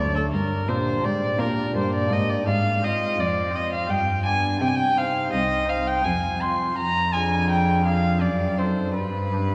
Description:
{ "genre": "classical, baroque-style sonata movement with continuo", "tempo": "84 BPM", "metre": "3/4", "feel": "straight", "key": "unclear", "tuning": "A4 = 439 Hz", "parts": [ { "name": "dark violin", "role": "melody", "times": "0.0-9.5 s", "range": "A4 to C6", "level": "-26 LUFS", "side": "equal", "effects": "none" }, { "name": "pipe organ, flutes", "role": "accompaniment", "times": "0.0-9.5 s", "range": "C2 to D5", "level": "-30 LUFS", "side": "equal", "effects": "none" }, { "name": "rich cello", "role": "bass", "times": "0.0-9.5 s", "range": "C2 to C3", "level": "-28 LUFS", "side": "equal", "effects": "none" } ], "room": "wet church reverb, RT60 3.1 s", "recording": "recorded in a church or concert hall", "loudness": "-23 LUFS", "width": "mono", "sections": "0.0-9.5 A section", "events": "none", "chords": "0.3 Gm; 2.5 Fm/Ab; 3.9 G; 4.6 Cm; 6.0 Fm; 6.8 Ddim/F; 8.2 F#dim7; 9.0 G" }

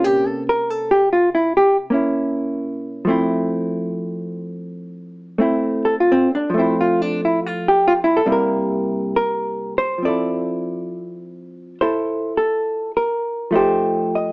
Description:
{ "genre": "jazz ballad", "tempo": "69 BPM", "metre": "4/4", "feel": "swing 68% on 8ths", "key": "F major", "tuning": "A4 = 442 Hz", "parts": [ { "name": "hollow-body jazz guitar", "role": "solo", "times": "0.0-14.3 s", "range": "C3 to Eb5", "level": "-17 LUFS", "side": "equal", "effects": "none" } ], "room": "moderate studio reverb, RT60 0.8 s", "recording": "band playing live in one room, small speaker sound", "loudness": "-17 LUFS", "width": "side -25 dB against mid", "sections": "0.0-10.0 A section; 10.0-14.3 B section", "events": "none", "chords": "0.0 C7b9; 3.1 Fmaj7; 8.3 C7; 10.0 Fmaj7; 13.5 F9" }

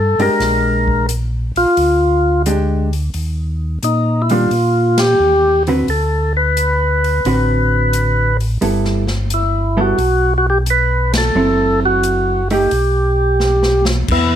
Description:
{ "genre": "soul jazz organ trio", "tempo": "88 BPM", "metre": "4/4", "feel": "swing 69% on 8ths", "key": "G major", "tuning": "A4 = 442 Hz", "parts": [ { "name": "percussive tonewheel organ", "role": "melody", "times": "0.0-14.4 s", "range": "B3 to B4", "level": "-15 LUFS", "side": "equal", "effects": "slow rotary speaker" }, { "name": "mellow tonewheel organ", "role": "bass", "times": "0.0-14.4 s", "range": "F#1 to Bb2", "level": "-18 LUFS", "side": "equal", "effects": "slow rotary speaker" }, { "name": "vintage hollow-body jazz guitar", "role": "accompaniment", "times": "0.2-12.7 s", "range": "D3 to B4", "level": "-18 LUFS", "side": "right 1 dB", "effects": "none" }, { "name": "swinging big-band drum kit", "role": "drums", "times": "0.2-14.3 s", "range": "crash cymbal, hi-hat, kick drum, ride cymbal, snare drum", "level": "-24 LUFS", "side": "left 1 dB", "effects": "none" } ], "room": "moderate studio ambience, RT60 0.5 s", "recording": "none", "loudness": "-13 LUFS", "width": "side -10 dB against mid", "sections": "0.0-14.1 A section", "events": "band accent 4.9-5.2, 11.0-11.3; drum fill 13.4-14.1", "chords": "0.4 Bb6; 3.1 Ebmaj7; 5.9 D6; 8.6 G69; 11.3 F#m7b5; 12.7 G/B" }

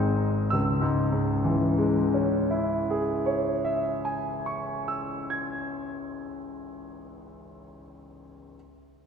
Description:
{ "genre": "classical, romantic nocturne for solo piano", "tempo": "41 BPM", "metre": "4/4", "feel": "rubato", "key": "C# minor", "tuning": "A4 = 440 Hz", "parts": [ { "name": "clear concert grand piano", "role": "solo", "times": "0.0-8.6 s", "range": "G#1 to G#6", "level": "-26 LUFS", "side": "left 1 dB", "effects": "none" } ], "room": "wet concert hall reverb, RT60 2.1 s", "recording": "recorded in a church or concert hall", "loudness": "-24 LUFS", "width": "side -7 dB against mid", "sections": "0.5-6.4 A section", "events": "none", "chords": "0.0 G#7; 0.5 C#m" }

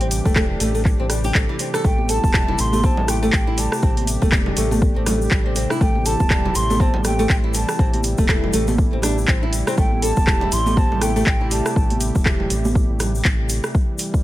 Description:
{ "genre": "afro house", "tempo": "121 BPM", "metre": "4/4", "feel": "swing 58% on 16ths", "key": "A minor", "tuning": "A4 = 440 Hz", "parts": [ { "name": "mellow hollow silver concert flute", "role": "melody", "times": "0.0-12.0 s", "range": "G5 to C6", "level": "-26 LUFS", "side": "right 1 dB", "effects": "digital delay" }, { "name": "warm analog pad", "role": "sustained chords", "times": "0.0-14.2 s", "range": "C3 to G4", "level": "-27 LUFS", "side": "equal", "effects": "chorus, sidechain pumping" }, { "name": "flamenco guitar", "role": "arpeggios", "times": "0.0-11.6 s", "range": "E3 to A4", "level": "-25 LUFS", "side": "equal", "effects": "sidechain pumping, digital delay" }, { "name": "round analog bass", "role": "bass", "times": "0.0-13.6 s", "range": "E1 to A1", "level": "-24 LUFS", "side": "equal", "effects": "tube saturation, sidechain pumping" }, { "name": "afro-pop drum kit", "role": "drums", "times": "0.0-14.1 s", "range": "handclaps, hi-hat, rim click", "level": "-24 LUFS", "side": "equal", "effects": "overdrive" }, { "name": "egg shaker", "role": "percussion", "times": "0.1-14.2 s", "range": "none", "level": "-31 LUFS", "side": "left 4 dB", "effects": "none" }, { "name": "electronic kick drum", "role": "drums", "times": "0.3-14.2 s", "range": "none", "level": "-18 LUFS", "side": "equal", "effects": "overdrive" }, { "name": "congas", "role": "percussion", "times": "2.0-13.1 s", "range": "none", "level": "-27 LUFS", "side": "right 2 dB", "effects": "none" } ], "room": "small room ambience", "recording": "none", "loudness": "-16 LUFS", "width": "side -15 dB against mid", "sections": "0.0-14.2 A section", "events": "none", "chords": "0.0 Am7" }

